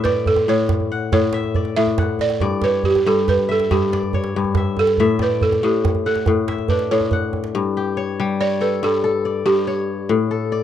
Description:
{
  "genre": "west african traditional, West African string and xylophone music",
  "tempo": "94 BPM (dotted quarters)",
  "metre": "12/8",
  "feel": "straight",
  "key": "G lydian",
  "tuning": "A4 = 440 Hz",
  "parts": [
    { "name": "balafon", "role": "melody", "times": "0.0-9.9 s", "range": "G4 to E5", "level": "-20 LUFS", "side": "right 4 dB", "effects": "none" },
    { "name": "kora", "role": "arpeggios", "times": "0.0-10.6 s", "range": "G2 to F#5", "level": "-20 LUFS", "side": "left 5 dB", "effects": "none" },
    { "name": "djembe", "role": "percussion", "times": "0.0-7.5 s", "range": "none", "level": "-23 LUFS", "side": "right 4 dB", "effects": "none" }
  ],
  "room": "small room ambience",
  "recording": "dry, close 1970s-style studio recording",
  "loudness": "-16 LUFS",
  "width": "side -10 dB against mid",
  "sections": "0.0-7.5 A section; 7.5-10.6 B section",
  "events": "none",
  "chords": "0.0 A; 2.4 G5; 5.0 A5; 7.5 G5; 10.1 A"
}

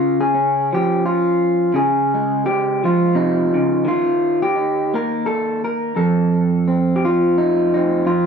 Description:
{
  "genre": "folk, solo fingerstyle acoustic guitar",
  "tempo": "86 BPM",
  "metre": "3/4",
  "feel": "swing 55% on 8ths",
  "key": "unclear",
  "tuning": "A4 = 439 Hz",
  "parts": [
    { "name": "electric guitar through a small old amp", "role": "solo", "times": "0.0-8.3 s", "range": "F2 to Bb4", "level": "-15 LUFS", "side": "equal", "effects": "none" }
  ],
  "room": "moderate large studio reverb, RT60 1.2 s",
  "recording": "band playing live in one room",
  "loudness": "-15 LUFS",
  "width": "side -6 dB against mid",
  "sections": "0.0-8.1 A section",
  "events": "none",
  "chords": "0.0 Db; 3.9 Eb5; 6.0 F"
}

